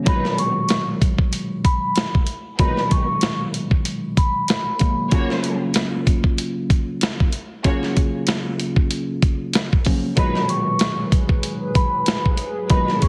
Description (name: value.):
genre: hip hop, boom-bap hip-hop.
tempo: 95 BPM.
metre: 4/4.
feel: swing 56% on 16ths.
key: G# dorian.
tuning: A4 = 440 Hz.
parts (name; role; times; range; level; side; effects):
tine electric piano; accompaniment; 0.0-13.1 s; A#2 to E#4; -27 LUFS; equal; cassette tape, high-pass filter, low-pass filter.
vibraphone with soft mallets; melody; 0.1-5.1, 10.2-13.1 s; B5 to C#6; -26 LUFS; equal; high-pass filter, low-pass filter, digital delay.
rich studio string section; stabs; 0.1-13.1 s; F#3 to C#5; -32 LUFS; equal; high-pass filter, low-pass filter, digital delay.
dusty soul sampler-style drum kit; drums; 0.1-13.1 s; hi-hat, kick drum, snare drum; -21 LUFS; equal; vintage 12-bit sampler grit.
hollow soft pad; sustained chords; 10.2-13.1 s; G#2 to B4; -32 LUFS; equal; chorus, high-pass filter, low-pass filter.
room: digital ambience.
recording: heavily compressed radio sound, multiband compression, lossy compression artefacts.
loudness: -20 LUFS.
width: mono.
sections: 0.1-13.1 A section.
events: none.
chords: 0.1 G#m9; 5.1 F#maj7; 10.2 G#m9.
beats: | 0.07 0.70 1.33 1.96 | 2.59 3.23 3.86 4.49 | 5.12 5.75 6.38 7.01 | 7.65 8.28 8.91 9.54 | 10.17 10.80 11.44 12.07 | 12.70.